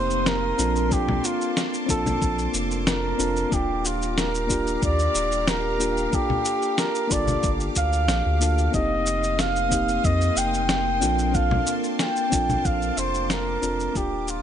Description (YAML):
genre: sunset chillout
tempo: 92 BPM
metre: 4/4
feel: straight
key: Bb major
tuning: A4 = 441 Hz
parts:
  - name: trumpet with bucket mute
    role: melody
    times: 0.0-14.4 s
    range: F4 to G5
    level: -25 LUFS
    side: right 1 dB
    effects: tape echo
  - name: soft electric-piano-like synth keys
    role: accompaniment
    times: 0.0-14.4 s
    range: Bb3 to A4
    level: -28 LUFS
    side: left 1 dB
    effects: chorus, auto-pan, tape echo
  - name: soft string machine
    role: sustained chords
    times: 0.0-14.4 s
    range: Bb3 to Eb6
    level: -31 LUFS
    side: left 1 dB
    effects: ensemble chorus
  - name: round analog bass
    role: bass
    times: 0.0-14.4 s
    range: Eb1 to F2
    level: -27 LUFS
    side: equal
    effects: none
  - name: electronic shaker, snare drum and congas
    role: drums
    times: 0.1-14.4 s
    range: none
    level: -26 LUFS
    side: left 1 dB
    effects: none
  - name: electronic kick drum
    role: drums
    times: 0.9-14.1 s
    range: none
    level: -28 LUFS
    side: equal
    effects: none
room: light reverb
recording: nothing above 10.4 kHz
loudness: -21 LUFS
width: side -9 dB against mid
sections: 0.0-14.4 A section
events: fade-out 12.2-14.4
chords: 0.0 F7sus4; 0.6 Bbmaj9; 3.5 Ebmaj9; 6.1 Gm7; 8.7 F7sus4; 11.0 Bbmaj9